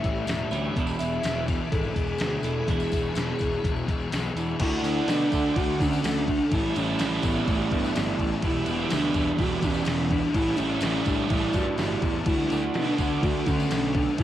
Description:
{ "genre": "rock, shoegaze and dream pop", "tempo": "125 BPM", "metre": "4/4", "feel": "straight", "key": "unclear", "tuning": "A4 = 440 Hz", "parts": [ { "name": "pure breathy sine lead", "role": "melody", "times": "0.0-14.2 s", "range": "A3 to E5", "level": "-29 LUFS", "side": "left 1 dB", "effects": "chorus, analog delay" }, { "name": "string machine, full ensemble", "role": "sustained chords", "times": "0.0-14.2 s", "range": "G3 to D6", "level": "-38 LUFS", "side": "left 1 dB", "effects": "ensemble chorus, cassette tape" }, { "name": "overdriven semi-hollow guitar", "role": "riff", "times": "0.0-14.2 s", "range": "E2 to F#4", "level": "-30 LUFS", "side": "right 8 dB", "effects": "reverse reverb, cassette tape" }, { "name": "thick fuzz guitar", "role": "riff", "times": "0.0-14.2 s", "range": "E2 to D4", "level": "-32 LUFS", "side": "left 7 dB", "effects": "distortion, ensemble chorus, cassette tape" }, { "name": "fuzz picked electric bass", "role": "bass", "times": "0.0-14.2 s", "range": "E1 to B2", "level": "-31 LUFS", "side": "equal", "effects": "overdrive" }, { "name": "gated 80s digital drum machine", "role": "drums", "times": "0.0-14.2 s", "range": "crash cymbal, hi-hat, kick drum, snare drum", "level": "-29 LUFS", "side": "equal", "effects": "gated reverb, gated reverb snare, overdrive, cassette tape" }, { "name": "tambourine", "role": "percussion", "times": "0.2-14.2 s", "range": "none", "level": "-45 LUFS", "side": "left 7 dB", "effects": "none" } ], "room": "little or no reverb", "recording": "home recording on cassette", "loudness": "-23 LUFS", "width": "side -12 dB against mid", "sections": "0.0-4.6 A section; 4.6-14.2 B section", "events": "none", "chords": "0.0 A7; 0.8 E7; 4.6 D6; 6.5 A7; 8.4 Em7; 10.3 A7; 12.3 D6" }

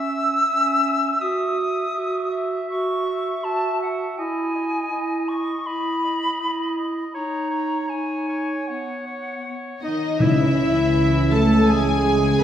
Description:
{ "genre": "cinematic", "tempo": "81 BPM", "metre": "4/4", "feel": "rubato", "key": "C# minor", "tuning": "A4 = 440 Hz", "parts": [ { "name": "mellow clarinet", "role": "second line", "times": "0.0-12.4 s", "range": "B3 to A4", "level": "-26 LUFS", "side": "right 2 dB", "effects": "none" }, { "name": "silver concert flute", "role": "second line", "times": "0.0-12.4 s", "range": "D#5 to E6", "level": "-25 LUFS", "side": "left 1 dB", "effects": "none" }, { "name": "warm oboe", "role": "second line", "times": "0.0-12.4 s", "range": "D#4 to E5", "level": "-30 LUFS", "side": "equal", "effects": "none" }, { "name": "mellow French horn", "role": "melody", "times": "9.8-12.4 s", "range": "D#4 to A4", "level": "-25 LUFS", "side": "left 4 dB", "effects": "none" }, { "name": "rich studio violin section", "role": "melody", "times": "9.8-12.4 s", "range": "D#5 to A5", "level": "-28 LUFS", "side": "left 5 dB", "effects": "none" }, { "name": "warm studio violin section", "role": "second line", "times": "9.8-12.4 s", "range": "D#5 to A5", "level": "-30 LUFS", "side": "left 1 dB", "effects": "none" }, { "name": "rich studio viola section", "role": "accompaniment", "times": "9.8-12.4 s", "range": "D#4 to A4", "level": "-27 LUFS", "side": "right 3 dB", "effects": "none" }, { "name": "warm symphonic cello section", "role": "bass", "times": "9.8-12.4 s", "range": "D#3 to A3", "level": "-22 LUFS", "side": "right 1 dB", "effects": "none" }, { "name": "mellow French horn section", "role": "sustained chords", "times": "10.2-12.4 s", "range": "E3 to C#4", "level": "-24 LUFS", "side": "right 1 dB", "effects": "none" }, { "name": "rich symphonic double bass section", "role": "bass", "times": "10.2-12.4 s", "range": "C#2", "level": "-23 LUFS", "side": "equal", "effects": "none" }, { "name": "timpani", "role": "percussion", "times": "10.2-11.3 s", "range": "C#3", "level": "-23 LUFS", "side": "left 2 dB", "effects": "none" } ], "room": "wet scoring stage reverb, RT60 1.8 s", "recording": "heard from further back in the room", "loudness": "-20 LUFS", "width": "side -10 dB against mid", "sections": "0.0-10.2 A section; 10.2-12.4 A section", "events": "none", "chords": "0.0 C#m; 1.2 F#5; 4.2 Emaj7; 7.1 D#5; 8.7 Bsus2; 10.2 C#m" }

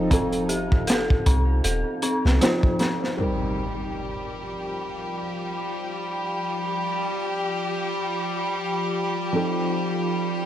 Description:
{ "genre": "trip hop", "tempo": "78 BPM", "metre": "4/4", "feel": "swing 57% on 16ths", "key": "C dorian", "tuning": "A4 = 440 Hz", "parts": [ { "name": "felt-muted upright piano", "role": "accompaniment", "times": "0.0-10.5 s", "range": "F3 to C5", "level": "-28 LUFS", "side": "equal", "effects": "tremolo, low-pass filter, tape echo" }, { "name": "dark detuned synth bell", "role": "arpeggios", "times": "0.0-3.2 s", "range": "C4 to A4", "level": "-28 LUFS", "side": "equal", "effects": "chorus, tape echo" }, { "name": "soft 808-style bass", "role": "bass", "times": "0.0-2.4 s", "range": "Eb1 to C2", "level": "-24 LUFS", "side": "equal", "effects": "none" }, { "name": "bowed-like drone", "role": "texture", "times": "0.0-10.5 s", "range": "F3 to F4", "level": "-33 LUFS", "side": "equal", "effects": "built-in reverb" }, { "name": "crunchy breakbeat drum kit", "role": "drums", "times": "0.1-3.2 s", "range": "hi-hat, kick drum, snare drum", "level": "-22 LUFS", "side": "equal", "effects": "none" }, { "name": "bright studio violin section", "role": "sustained chords", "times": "3.2-10.5 s", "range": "G3 to G4", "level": "-27 LUFS", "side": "left 1 dB", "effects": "vintage 12-bit sampler grit" }, { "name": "impact", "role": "sound effects", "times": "3.2-6.3 s", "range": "none", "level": "-33 LUFS", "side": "equal", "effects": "none" } ], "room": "light reverb, studio reverb", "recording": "none", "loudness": "-22 LUFS", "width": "side -11 dB against mid", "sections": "0.0-3.2 A section; 3.2-10.5 B section", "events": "impact 3.2-6.3; filter sweep on felt piano 3.2-10.5", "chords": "0.0 F7; 3.2 Cm7; 9.3 F7" }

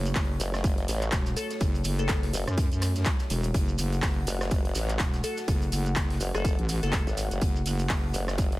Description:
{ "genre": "bass house", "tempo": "124 BPM", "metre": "4/4", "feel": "swing 58% on 16ths", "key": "F# minor", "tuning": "A4 = 439 Hz", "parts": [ { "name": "dark analog pad", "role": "sustained chords", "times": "0.0-8.6 s", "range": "A3 to F#5", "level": "-38 LUFS", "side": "equal", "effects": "chorus, sidechain pumping" }, { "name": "wobble bass", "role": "bass", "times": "0.0-8.1 s", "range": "E1 to F#2", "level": "-28 LUFS", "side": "equal", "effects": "chorus, tube saturation, sidechain pumping" }, { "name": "house drum kit", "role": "drums", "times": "0.1-8.6 s", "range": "handclaps, hi-hat, rim click", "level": "-34 LUFS", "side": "equal", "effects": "overdrive" }, { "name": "oversized low-tuned drum kit", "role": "drums", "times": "0.1-8.6 s", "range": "hi-hat, snare drum", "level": "-43 LUFS", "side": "left 2 dB", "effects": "sidechain pumping on hats, high-pass filter on hats, high-pass filter on snare, high-pass filter on room" }, { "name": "shekere", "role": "percussion", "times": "0.1-8.5 s", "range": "none", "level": "-39 LUFS", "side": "right 3 dB", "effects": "none" }, { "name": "electronic kick drum", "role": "drums", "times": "0.2-8.5 s", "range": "none", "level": "-27 LUFS", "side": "equal", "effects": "overdrive" }, { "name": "formant-sweep wobble bass", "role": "bass", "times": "0.4-8.6 s", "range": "F#1 to A1", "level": "-29 LUFS", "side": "equal", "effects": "chorus, tube saturation, sidechain pumping" }, { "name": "glassy wavetable pluck", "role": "melody", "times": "1.4-7.5 s", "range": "A4", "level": "-36 LUFS", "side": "left 4 dB", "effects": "chorus, dub echo" } ], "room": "studio reverb", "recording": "none", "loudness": "-25 LUFS", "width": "side -18 dB against mid", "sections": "0.0-8.6 A section", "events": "none", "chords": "0.0 F#m" }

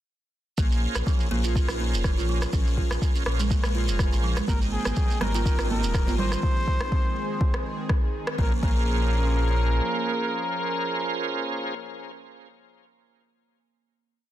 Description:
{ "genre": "afro house", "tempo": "123 BPM", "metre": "4/4", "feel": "swing 54% on 16ths", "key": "Bb dorian", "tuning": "A4 = 440 Hz", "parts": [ { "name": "buzzing kalimba", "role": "arpeggios", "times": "0.6-8.8 s", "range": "F3 to F4", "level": "-33 LUFS", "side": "right 4 dB", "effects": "sidechain pumping, ping-pong delay" }, { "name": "bright tonewheel organ", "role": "stabs", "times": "0.6-11.7 s", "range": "Db4 to G5", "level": "-32 LUFS", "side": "right 3 dB", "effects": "overdrive, chorus vibrato, slow rotary speaker, sidechain pumping, ping-pong delay" }, { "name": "warm sub bass", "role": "bass", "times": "0.6-9.8 s", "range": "Eb1 to Bb1", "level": "-26 LUFS", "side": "equal", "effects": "sidechain pumping" }, { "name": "electronic kick drum", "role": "drums", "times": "0.6-8.8 s", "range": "none", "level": "-24 LUFS", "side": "equal", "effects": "overdrive" }, { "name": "shekere", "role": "percussion", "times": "0.6-6.4 s", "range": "none", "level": "-37 LUFS", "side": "right 6 dB", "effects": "none" }, { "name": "electronic rim click", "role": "drums", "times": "1.0-8.4 s", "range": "none", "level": "-34 LUFS", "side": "equal", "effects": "overdrive" }, { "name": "trumpet with bucket mute", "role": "melody", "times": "4.5-11.7 s", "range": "Ab4 to C5", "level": "-32 LUFS", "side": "equal", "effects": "ping-pong delay" }, { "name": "warm analog pad", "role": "sustained chords", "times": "4.5-11.5 s", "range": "Eb3 to G5", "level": "-34 LUFS", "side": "equal", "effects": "chorus, sidechain pumping" }, { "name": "congas", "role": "percussion", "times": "4.5-6.3 s", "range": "none", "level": "-33 LUFS", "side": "right 4 dB", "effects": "none" } ], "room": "small room ambience", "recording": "dense, heavily limited modern master", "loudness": "-22 LUFS", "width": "side -13 dB against mid", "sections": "0.6-8.4 drop; 8.4-12.3 final chord", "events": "drop 0.6-8.4; band accent 8.3", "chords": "0.6 Bbm7; 4.5 Abmaj7; 8.4 Bbm7" }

